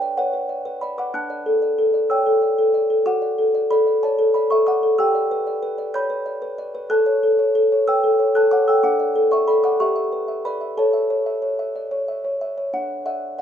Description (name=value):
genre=classical, lullaby for music box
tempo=62 BPM (dotted quarters)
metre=6/8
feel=straight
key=unclear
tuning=A4 = 439 Hz
part: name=music box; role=solo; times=0.0-13.4 s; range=D4 to G6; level=-18 LUFS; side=equal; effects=none
room=moderate small room reverb, RT60 0.5 s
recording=minimal, uncompressed stereo recording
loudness=-17 LUFS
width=side -9 dB against mid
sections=0.0-12.7 A section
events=none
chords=0.0 Bm/D; 1.1 D; 3.1 D/F#; 5.0 Em7/G; 6.9 A7; 8.8 D; 9.8 Em/G; 10.8 A; 12.7 D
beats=0.18 | 1.15 2.11 | 3.07 4.03 | 4.99 5.95 | 6.91 7.87 | 8.84 9.81 | 10.78 11.76 | 12.74